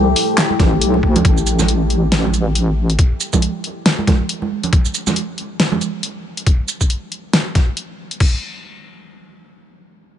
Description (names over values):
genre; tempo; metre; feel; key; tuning
deep dubstep; 138 BPM; 4/4; swing 58% on 16ths, half-time; A minor; A4 = 440 Hz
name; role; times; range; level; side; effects
deep dark ambient pad; sustained chords; 0.0-1.2 s; A3 to G4; -22 LUFS; left 2 dB; chorus, built-in reverb
deep soft wobble bass; bass; 0.0-3.0 s; A1 to D2; -16 LUFS; equal; chorus
flickering grainy texture; texture; 0.0-1.3 s; A4; -31 LUFS; right 1 dB; none
deep house drum kit; drums; 0.2-8.3 s; crash cymbal, handclaps, hi-hat, shaker, snare drum; -19 LUFS; left 1 dB; none
congas; percussion; 0.5-5.8 s; none; -22 LUFS; right 6 dB; dub echo
electronic kick drum; drums; 0.6-8.3 s; none; -14 LUFS; left 1 dB; none
room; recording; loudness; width
light reverb; nothing above 10.5 kHz; -14 LUFS; side -10 dB against mid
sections
0.0-1.2 A section; 1.2-8.2 B section; 8.2-10.2 C section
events
drop 0.0-1.2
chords
0.0 A5; 1.2 N.C.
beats
0.38 0.81 | 1.25 1.68 2.12 2.55 | 2.99 3.42 3.86 4.29 | 4.73 5.16 5.59 6.03 | 6.46 6.90 7.33 7.77 | 8.20